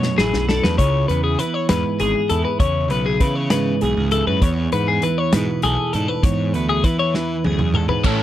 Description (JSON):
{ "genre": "math rock and midwest emo", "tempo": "66 BPM (dotted quarters)", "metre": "6/8", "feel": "straight", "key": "unclear", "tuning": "A4 = 440 Hz", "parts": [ { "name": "twelve-string electric guitar", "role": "accompaniment", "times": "0.0-8.2 s", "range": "E2 to A4", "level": "-22 LUFS", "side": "right 5 dB", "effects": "none" }, { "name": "twelve-string electric guitar", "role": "arpeggios", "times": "0.0-8.2 s", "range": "G#4 to C#5", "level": "-22 LUFS", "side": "left 6 dB", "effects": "none" }, { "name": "fuzz picked electric bass", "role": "bass", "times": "0.0-8.2 s", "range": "G#1 to E3", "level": "-22 LUFS", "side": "equal", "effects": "overdrive" }, { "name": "loose indie drum kit", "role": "drums", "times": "0.0-8.2 s", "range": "crash cymbal, hi-hat, kick drum, snare drum, toms", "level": "-20 LUFS", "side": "equal", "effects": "none" }, { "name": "overdriven electric guitar", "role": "riff", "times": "8.0-8.2 s", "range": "A2 to A4", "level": "-19 LUFS", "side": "right 1 dB", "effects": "spring reverb" } ], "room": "little or no reverb", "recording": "dry, close 1970s-style studio recording", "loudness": "-16 LUFS", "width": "side -12 dB against mid", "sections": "0.0-8.1 A section", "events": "drum fill 0.0-0.8, 7.1-8.1", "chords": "0.0 Bm7; 0.8 C#m7; 4.4 E7", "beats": "| 0.79 1.70 | 2.61 3.51 | 4.42 5.33 | 6.24 7.14 | 8.05" }